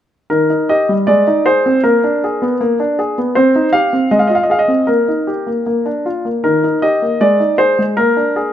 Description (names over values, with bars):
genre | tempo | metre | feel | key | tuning
classical-period piano sonatina | 78 BPM | 2/4 | straight | Eb major | A4 = 442 Hz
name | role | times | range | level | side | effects
clear baby grand piano | solo | 0.3-8.5 s | Eb3 to F5 | -12 LUFS | equal | none
room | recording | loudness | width
moderate recital hall reverb, RT60 1.6 s | none | -12 LUFS | side -10 dB against mid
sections
0.3-8.5 A section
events
none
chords
0.3 Eb; 1.1 Ab; 1.8 Bb7b9; 3.3 Cm; 4.1 Fm/Ab; 4.9 Eb/Bb; 5.7 Bb; 6.4 Eb; 7.2 Ab; 8.0 Bb7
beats
| 0.30 1.07 | 1.83 2.59 | 3.34 4.10 | 4.87 5.66 | 6.44 7.21 | 7.98